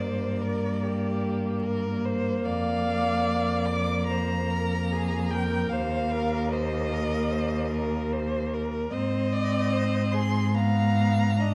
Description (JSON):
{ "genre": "classical, slow romantic movement for string quartet", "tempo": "74 BPM", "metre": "4/4", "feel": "rubato", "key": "unclear", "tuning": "A4 = 440 Hz", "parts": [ { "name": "warm violin", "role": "melody", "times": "0.0-11.5 s", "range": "D5 to D6", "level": "-35 LUFS", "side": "equal", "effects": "none" }, { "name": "warm violin", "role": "second line", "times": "0.0-11.5 s", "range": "G4 to F5", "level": "-35 LUFS", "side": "equal", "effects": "none" }, { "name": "warm viola", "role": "accompaniment", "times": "0.0-11.5 s", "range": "Bb3 to D4", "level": "-32 LUFS", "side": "equal", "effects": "none" }, { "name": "rich cello", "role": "bass", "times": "0.0-11.5 s", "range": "Eb2 to Ab2", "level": "-30 LUFS", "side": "equal", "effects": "none" } ], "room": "wet recital hall reverb, RT60 1.4 s", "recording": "dark, warm production, vinyl crackle", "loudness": "-27 LUFS", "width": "mono", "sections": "0.0-11.5 A section", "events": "none", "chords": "0.0 Gm; 2.4 Bb/F; 5.7 Eb5; 8.9 Ab; 10.5 Abm" }